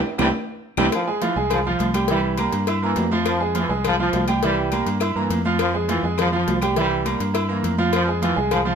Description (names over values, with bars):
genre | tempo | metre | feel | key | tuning
latin, salsa | 206 BPM | 4/4 | straight | F harmonic minor | A4 = 440 Hz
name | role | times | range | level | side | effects
brilliant trombone section | second line | 0.2-8.8 s | C3 to G3 | -25 LUFS | left 1 dB | none
bright grand piano | accompaniment | 0.2-8.8 s | E3 to E6 | -23 LUFS | right 5 dB | none
fingered electric bass | bass | 0.2-8.8 s | C2 to G2 | -25 LUFS | left 1 dB | none
bongos and cowbell | percussion | 0.2-8.7 s | none | -29 LUFS | left 11 dB | none
claves | percussion | 0.2-8.7 s | none | -35 LUFS | left 7 dB | none
congas | percussion | 0.2-8.8 s | none | -29 LUFS | left 2 dB | none
timbales and agogo bells | percussion | 0.2-8.7 s | none | -30 LUFS | right 1 dB | none
room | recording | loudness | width
moderate studio reverb, RT60 1.0 s | minimal, uncompressed stereo recording | -19 LUFS | side -7 dB against mid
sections
0.9-8.8 A section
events
band accent 0.0-0.9; drum fill 0.5-0.9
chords
0.0 C; 0.9 Fm; 2.1 C7; 3.3 Fm; 4.4 C7; 5.6 Fm; 6.8 C7; 7.9 Fm